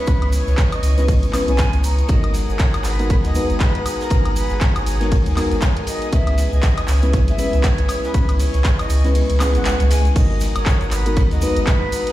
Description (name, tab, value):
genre	deep house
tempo	119 BPM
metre	4/4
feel	swing 58% on 16ths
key	G# minor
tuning	A4 = 438 Hz
part	mellow concert flute	melody	0.0-12.1 s	A#4 to A#5	-29 LUFS	equal	analog delay
part	airy breathy pad	sustained chords	0.0-12.1 s	E4 to D#6	-32 LUFS	left 1 dB	chorus, sidechain pumping
part	mellow FM electric piano	stabs	0.0-12.1 s	G#3 to B4	-24 LUFS	left 1 dB	chorus, cassette tape, sidechain pumping, analog delay
part	string machine, violins	texture	0.0-10.2 s	G#4 to C#6	-36 LUFS	left 1 dB	ensemble chorus
part	round analog bass	bass	0.1-11.9 s	G#1 to D#2	-18 LUFS	equal	sidechain pumping
part	electronic kick drum	drums	0.1-11.8 s	none	-17 LUFS	equal	overdrive
part	house drum kit	drums	0.1-12.1 s	crash cymbal, handclaps, hi-hat, woodblock	-28 LUFS	equal	overdrive
part	vintage drum kit	drums	0.1-12.1 s	hi-hat, ride cymbal, snare drum	-36 LUFS	left 1 dB	sidechain pumping on cymbals, high-pass filter on cymbals, sidechain pumping on hats, high-pass filter on hats, high-pass filter on snare, high-pass filter on room
part	tube shaker	percussion	0.1-12.1 s	none	-38 LUFS	right 3 dB	none
part	swell	sound effects	9.3-10.2 s	none	-31 LUFS	right 2 dB	none
room	light reverb, small room ambience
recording	played on a big sound system in a bare room, large studio reverb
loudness	-15 LUFS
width	side -15 dB against mid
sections	0.0-10.2 A section; 10.2-12.1 B section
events	kick drops out 9.2-10.2; swell 9.3-10.2; drop 10.2-12.1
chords	0.0 C#m7; 2.1 G#m9; 6.1 C#m7; 10.2 G#m9